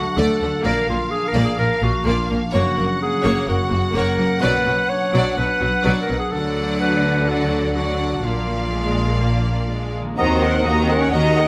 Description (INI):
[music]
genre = cinematic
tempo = 126 BPM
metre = 4/4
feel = straight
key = unclear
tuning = A4 = 440 Hz
[part]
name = clear symphonic violin section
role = melody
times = 0.0-11.5 s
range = E#5 to Bb5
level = -30 LUFS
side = equal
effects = none
[part]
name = clear chamber violin section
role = second line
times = 0.0-11.5 s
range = E#4 to Eb5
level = -32 LUFS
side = equal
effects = none
[part]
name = warm clarinet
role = second line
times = 0.0-11.5 s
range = E#4 to C#5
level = -25 LUFS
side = equal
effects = none
[part]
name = concert harp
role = arpeggios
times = 0.0-11.5 s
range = F#2 to F#4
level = -30 LUFS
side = equal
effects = none
[part]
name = clear symphonic double bass section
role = bass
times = 0.0-11.5 s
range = F#1 to Eb2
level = -27 LUFS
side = equal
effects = none
[part]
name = rich symphonic cello section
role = bass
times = 0.0-11.5 s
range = F#2 to Eb3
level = -27 LUFS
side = equal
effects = none
[part]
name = clear symphonic viola section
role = accompaniment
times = 0.2-11.5 s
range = F#3 to Gb5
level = -28 LUFS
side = equal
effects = none
[part]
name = bright silver concert flute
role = second line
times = 10.2-11.4 s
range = Gb5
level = -32 LUFS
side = equal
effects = none
[part]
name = clear oboe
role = second line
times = 10.2-11.5 s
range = Eb5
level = -29 LUFS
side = equal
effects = none
[part]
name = warm French horn section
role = sustained chords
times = 10.2-11.5 s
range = Bb3 to Eb4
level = -24 LUFS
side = equal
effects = none
[part]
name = warm tuba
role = bass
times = 10.2-11.5 s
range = Eb2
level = -27 LUFS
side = equal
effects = none
[sound]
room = moderate scoring stage reverb, RT60 1.5 s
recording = close, detailed microphones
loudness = -20 LUFS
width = mono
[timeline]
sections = 0.0-10.2 A section; 10.2-11.5 B section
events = none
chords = 0.0 D; 0.7 A#; 2.5 F#; 4.4 Bm; 6.3 D; 8.2 A#; 10.2 Ebm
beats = 0.18 | 0.65 1.12 1.59 2.06 | 2.54 3.01 3.48 3.95 | 4.43 4.90 5.38 5.85 | 6.33 6.80 7.27 7.75 | 8.24 8.73 9.22 9.71 | 10.19 10.67 11.15